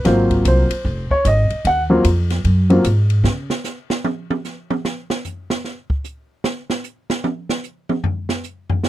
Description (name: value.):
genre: jazz piano trio.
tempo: 150 BPM.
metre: 4/4.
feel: swing 64% on 8ths.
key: Ab mixolydian.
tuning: A4 = 440 Hz.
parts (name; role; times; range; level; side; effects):
warm grand piano; melody; 0.0-2.8 s; Gb3 to Gb5; -16 LUFS; equal; none.
upright bass; bass; 0.0-3.5 s; F1 to Db3; -16 LUFS; equal; none.
open jazz drum kit; drums; 0.0-8.9 s; hi-hat, kick drum, ride cymbal, snare drum, toms; -23 LUFS; right 1 dB; none.
room: little or no reverb.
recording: dry, close 1970s-style studio recording.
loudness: -17 LUFS.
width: side -14 dB against mid.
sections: 0.0-8.9 A section.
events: grand piano solo 0.0-8.9; drum solo 3.2-8.9.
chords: 0.1 Ab13; 3.2 N.C..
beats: | 0.05 0.45 0.85 1.25 | 1.65 2.05 2.45 2.85 | 3.25 3.65 4.04 4.44 | 4.84 5.24 5.64 6.04 | 6.44 6.84 7.24 7.63 | 8.03 8.43 8.83.